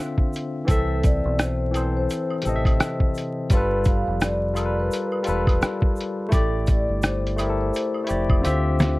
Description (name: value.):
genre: lo-fi hip hop.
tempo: 85 BPM.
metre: 4/4.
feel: swing 58% on 16ths.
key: unclear.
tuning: A4 = 440 Hz.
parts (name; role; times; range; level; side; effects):
barky tine electric piano; accompaniment; 0.0-9.0 s; C3 to E5; -26 LUFS; left 2 dB; medium stereo tremolo, cassette tape, low-pass filter.
lo-fi sampler-style drum kit; drums; 0.2-9.0 s; hi-hat, kick drum, rim click, snare drum; -21 LUFS; equal; none.
egg shaker and woodblock; percussion; 0.3-9.0 s; none; -37 LUFS; right 3 dB; none.
vibraphone with soft mallets; melody; 0.7-9.0 s; A4 to F5; -28 LUFS; left 1 dB; low-pass filter.
deep dub fingered electric bass; bass; 0.7-9.0 s; E1 to D2; -25 LUFS; equal; none.
room: light reverb.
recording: vinyl crackle.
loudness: -20 LUFS.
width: side -20 dB against mid.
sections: 0.0-9.0 A section.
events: drum fill 8.4-9.0.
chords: 0.0 Dm9; 0.7 C6; 3.5 G9; 6.3 A7sus4; 8.4 Dm11.